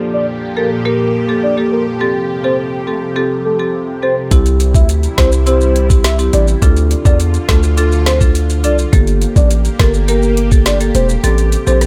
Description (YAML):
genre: dancehall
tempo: 104 BPM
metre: 4/4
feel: straight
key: unclear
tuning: A4 = 440 Hz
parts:
  - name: marimba with medium hard mallets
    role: accompaniment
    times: 0.0-11.8 s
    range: Bb3 to Bb4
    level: -20 LUFS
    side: equal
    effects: none
  - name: lush unison pad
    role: sustained chords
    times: 0.0-11.9 s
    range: Bb2 to G4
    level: -27 LUFS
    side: equal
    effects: chorus, phaser, sidechain pumping
  - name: soft octave-layered synth lead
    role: melody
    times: 0.1-11.8 s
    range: A4 to E5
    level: -21 LUFS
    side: equal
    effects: chorus, tremolo
  - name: hard-hitting 808-style bass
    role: bass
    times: 4.3-11.9 s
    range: E1 to E2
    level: -16 LUFS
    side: equal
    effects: none
  - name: island pop drum kit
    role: drums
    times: 4.3-11.9 s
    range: hi-hat, kick drum, rim click, snare drum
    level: -14 LUFS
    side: equal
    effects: none
  - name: maracas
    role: percussion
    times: 4.3-11.9 s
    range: none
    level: -31 LUFS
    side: equal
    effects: none
room: little or no reverb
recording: none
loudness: -13 LUFS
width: mono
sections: 0.0-11.9 A section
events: kick muted 11.2-11.9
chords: 0.0 Gmadd9; 2.0 Am7; 4.3 C; 6.6 Dm; 8.9 Gmadd9; 11.2 Am7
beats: 0.28 0.85 1.43 | 2.01 2.58 3.16 3.74 | 4.31 4.89 5.47 6.04 | 6.62 7.20 7.78 8.35 | 8.93 9.51 10.08 10.66 | 11.24 11.81